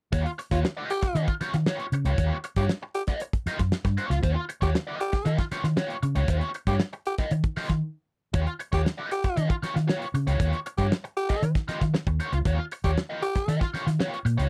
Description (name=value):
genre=funk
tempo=117 BPM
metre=4/4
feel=straight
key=Eb mixolydian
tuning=A4 = 441 Hz
part: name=biting overdriven guitar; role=accompaniment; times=0.1-14.5 s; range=F4 to Eb5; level=-34 LUFS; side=equal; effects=wah
part: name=vintage muted fingered electric bass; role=bass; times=0.1-14.5 s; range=Db2 to Eb3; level=-28 LUFS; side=equal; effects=none
part: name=damped 70s drum kit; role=drums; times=0.1-14.5 s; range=hi-hat, kick drum, snare drum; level=-30 LUFS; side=equal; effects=none
part: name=growling tenor saxophone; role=second line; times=0.5-13.6 s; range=F4 to G4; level=-31 LUFS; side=equal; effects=none
room=little or no reverb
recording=dry, close 1970s-style studio recording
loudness=-27 LUFS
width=mono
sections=0.1-14.5 A section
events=break 7.8-8.3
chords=0.1 Eb9